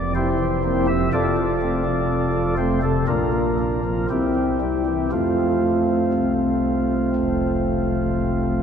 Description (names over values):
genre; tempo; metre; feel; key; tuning
classical, chorale-style piece for pipe organ; 58-62 BPM; 4/4; rubato; F major; A4 = 439 Hz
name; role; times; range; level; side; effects
pipe organ, flutes; solo; 0.0-8.6 s; F1 to E5; -19 LUFS; equal; none
room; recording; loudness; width
wet church reverb, RT60 3.5 s; heard from further back in the room, lossy compression artefacts; -19 LUFS; side -7 dB against mid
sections
0.0-8.6 A section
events
none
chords
0.0 C7/F; 1.1 F; 3.1 Bb; 4.1 C; 5.1 F